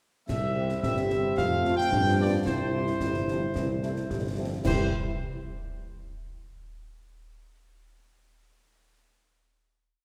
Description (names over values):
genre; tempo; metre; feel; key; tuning
military-style march for wind band; 110 BPM; 2/4; straight; C major; A4 = 441 Hz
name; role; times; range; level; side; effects
bright trumpet section; melody; 0.3-4.9 s; C5 to G5; -33 LUFS; equal; none
mellow trombone section; sustained chords; 0.3-4.9 s; E3 to C4; -38 LUFS; equal; none
mellow tuba; bass; 0.3-4.9 s; G1 to G2; -33 LUFS; equal; none
concert snare drum, clash cymbals and concert bass drum; drums; 0.3-4.9 s; none; -36 LUFS; equal; none
dark French horn section; accompaniment; 0.5-4.9 s; G3 to G4; -38 LUFS; equal; none
warm euphonium; second line; 0.8-4.3 s; D4 to G4; -34 LUFS; equal; none
room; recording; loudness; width
wet concert hall reverb, RT60 2.3 s; recorded in a church or concert hall; -27 LUFS; mono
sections
0.3-4.6 A section; 4.6-5.7 final chord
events
none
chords
0.3 C; 1.4 F; 1.9 G7; 2.5 C